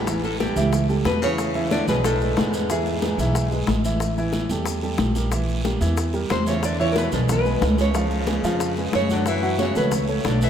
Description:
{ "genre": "Afro-Cuban jazz", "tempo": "183 BPM", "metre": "4/4", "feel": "straight", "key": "E mixolydian", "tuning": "A4 = 442 Hz", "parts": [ { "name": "nylon-string guitar", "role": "melody", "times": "0.0-3.8, 6.3-10.5 s", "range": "E4 to E5", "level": "-26 LUFS", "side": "right 1 dB", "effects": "none" }, { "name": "breathy baritone saxophone", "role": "second line", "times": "0.0-3.8, 6.3-10.5 s", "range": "E2 to E3", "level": "-30 LUFS", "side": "left 3 dB", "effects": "none" }, { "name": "dark baby grand piano", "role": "accompaniment", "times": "0.0-10.5 s", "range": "E3 to F#5", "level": "-26 LUFS", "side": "right 1 dB", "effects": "none" }, { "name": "upright bass", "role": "bass", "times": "0.0-10.5 s", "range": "A1 to F#2", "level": "-24 LUFS", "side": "right 1 dB", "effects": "none" }, { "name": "bongos", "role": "percussion", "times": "0.1-10.4 s", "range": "none", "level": "-31 LUFS", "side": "left 5 dB", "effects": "none" }, { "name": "congas", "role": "percussion", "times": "0.1-10.4 s", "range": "none", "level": "-28 LUFS", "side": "left 2 dB", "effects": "none" }, { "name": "guiro", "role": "percussion", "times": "0.1-10.5 s", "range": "none", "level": "-37 LUFS", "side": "right 5 dB", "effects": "none" }, { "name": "maracas", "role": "percussion", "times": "0.1-10.5 s", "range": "none", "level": "-39 LUFS", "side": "left 4 dB", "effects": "none" } ], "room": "moderate cathedral reverb, RT60 5.5 s", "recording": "in a vast, echoing space", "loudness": "-19 LUFS", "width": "side -9 dB against mid", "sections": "0.0-10.5 A section", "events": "none", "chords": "0.1 A7; 1.4 E; 4.0 A5; 5.3 Edim7; 6.6 E; 7.9 C#7; 9.3 F#m7", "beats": "| 0.08 0.40 0.73 1.06 | 1.39 1.72 2.04 2.37 | 2.70 3.03 3.35 3.68 | 4.01 4.34 4.67 5.00 | 5.32 5.65 5.98 6.31 | 6.63 6.96 7.29 7.62 | 7.95 8.28 8.60 8.93 | 9.26 9.59 9.92 10.25" }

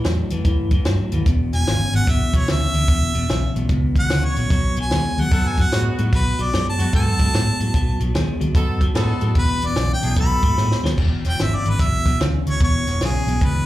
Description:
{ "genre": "electric blues shuffle", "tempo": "148 BPM", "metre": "4/4", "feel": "swing 65% on 8ths", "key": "E major", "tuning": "A4 = 440 Hz", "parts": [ { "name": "electric guitar through a small old amp", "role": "riff", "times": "0.0-13.7 s", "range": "E2 to G#3", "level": "-25 LUFS", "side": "left 2 dB", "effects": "none" }, { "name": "vintage muted fingered electric bass", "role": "bass", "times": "0.0-13.6 s", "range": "E1 to A2", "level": "-20 LUFS", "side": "equal", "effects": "none" }, { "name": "compact cocktail drum kit", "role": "drums", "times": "0.0-13.5 s", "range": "crash cymbal, hi-hat, kick drum, snare drum", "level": "-21 LUFS", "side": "equal", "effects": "none" }, { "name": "bright harmonica", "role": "melody", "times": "1.5-13.7 s", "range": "G#4 to B5", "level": "-24 LUFS", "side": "equal", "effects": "slapback echo" }, { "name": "bright horn section", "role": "stabs", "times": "5.3-10.7 s", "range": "B3 to A4", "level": "-29 LUFS", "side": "right 2 dB", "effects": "slapback echo" } ], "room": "little or no reverb", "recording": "live gig heard through the venue's PA, club reverb", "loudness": "-17 LUFS", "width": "side -15 dB against mid", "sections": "0.0-11.0 A section; 11.0-13.7 B section", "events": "harmonica solo 0.0-11.0; drum fill 10.6-11.0", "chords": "0.0 A7(no3); 1.3 E7(no3); 4.5 B7; 9.4 E7(no3); 10.2 B7; 11.0 E5", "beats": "0.04 0.45 0.85 | 1.26 1.67 2.07 2.48 | 2.88 3.29 3.69 4.10 | 4.50 4.91 5.31 5.72 | 6.12 6.53 6.93 7.34 | 7.74 8.14 8.55 8.95 | 9.36 9.76 10.17 10.57 | 10.98 11.38 11.79 12.20 | 12.60 13.01 13.41" }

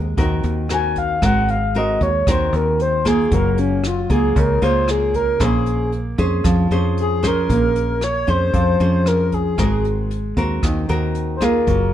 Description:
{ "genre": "bossa nova", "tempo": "115 BPM", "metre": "4/4", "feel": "straight", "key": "unclear", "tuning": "A4 = 444 Hz", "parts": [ { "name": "nylon-string guitar", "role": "accompaniment", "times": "0.0-11.9 s", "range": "Db3 to C5", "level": "-21 LUFS", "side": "right 1 dB", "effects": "none" }, { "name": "fingered electric bass", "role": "bass", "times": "0.0-11.9 s", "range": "Gb1 to F2", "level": "-21 LUFS", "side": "equal", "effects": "none" }, { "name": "jazz brush drum kit", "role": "drums", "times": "0.2-11.8 s", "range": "hi-hat, kick drum, rim click", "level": "-25 LUFS", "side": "equal", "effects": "none" }, { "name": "reedy FM lead", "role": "melody", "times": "0.7-11.9 s", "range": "Db4 to Ab5", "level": "-20 LUFS", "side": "left 2 dB", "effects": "chorus, tremolo" } ], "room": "light reverb", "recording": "dark, warm production", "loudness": "-16 LUFS", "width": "side -11 dB against mid", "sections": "0.0-7.5 A section; 7.5-11.9 B section", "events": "soft synth lead solo 0.0-7.5", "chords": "0.0 Ab9; 3.3 Gbmaj9; 5.4 Bbm9; 9.6 Ab9", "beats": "0.18 0.70 | 1.22 1.74 2.27 2.79 | 3.31 3.83 4.36 4.88 | 5.40 5.92 6.45 6.97 | 7.49 8.02 8.54 9.06 | 9.58 10.11 10.63 11.15 | 11.68" }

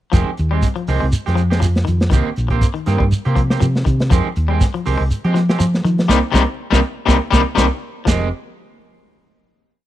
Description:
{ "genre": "afrobeat", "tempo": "121 BPM", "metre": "4/4", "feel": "swing 55% on 16ths", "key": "F minor", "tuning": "A4 = 443 Hz", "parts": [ { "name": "electric guitar at the edge of break-up", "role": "arpeggios", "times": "0.1-8.2 s", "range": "C3 to Ab3", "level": "-22 LUFS", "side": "left 8 dB", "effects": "none" }, { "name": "electric guitar at the edge of break-up", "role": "stabs", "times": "0.1-8.3 s", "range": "Eb3 to G4", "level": "-23 LUFS", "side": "right 7 dB", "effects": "wide subtle chorus" }, { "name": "hollow-body short-scale fingered electric bass", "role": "bass", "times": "0.1-8.3 s", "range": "F1 to F3", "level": "-17 LUFS", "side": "equal", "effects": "none" }, { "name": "crunchy breakbeat drum kit", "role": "drums", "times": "0.1-8.2 s", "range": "hi-hat, kick drum, ride cymbal, snare drum", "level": "-18 LUFS", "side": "equal", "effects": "none" }, { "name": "shekere", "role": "percussion", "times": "0.1-8.2 s", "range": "none", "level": "-20 LUFS", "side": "right 1 dB", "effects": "none" } ], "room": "studio reverb", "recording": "dry, close 1970s-style studio recording", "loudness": "-14 LUFS", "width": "side -13 dB against mid", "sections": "0.1-8.1 groove; 8.1-9.9 final chord", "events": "band accent 6.1-8.1", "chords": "0.1 Fm9; 2.1 Cm7; 4.1 Fm9; 6.1 Cm7; 8.1 Fm9", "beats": "| 0.14 0.64 1.13 1.63 | 2.13 2.62 3.12 3.62 | 4.12 4.61 5.11 5.60 | 6.10 6.59 7.09 7.58 | 8.07" }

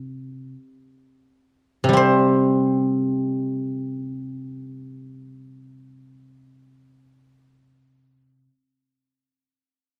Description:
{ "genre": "chinese traditional, Chinese solo plucked strings", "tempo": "free time", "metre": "none", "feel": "none", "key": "unclear", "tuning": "A4 = 443 Hz", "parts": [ { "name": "guzheng", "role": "solo", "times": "0.0-8.5 s", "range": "C3 to C5", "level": "-22 LUFS", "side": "equal", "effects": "none" } ], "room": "moderate recital hall reverb, RT60 1.6 s", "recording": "dark, warm production", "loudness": "-21 LUFS", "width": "mono", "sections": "0.0-2.0 A section; 2.0-7.4 B section", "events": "slowing down 0.0-2.0", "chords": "none", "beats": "free time" }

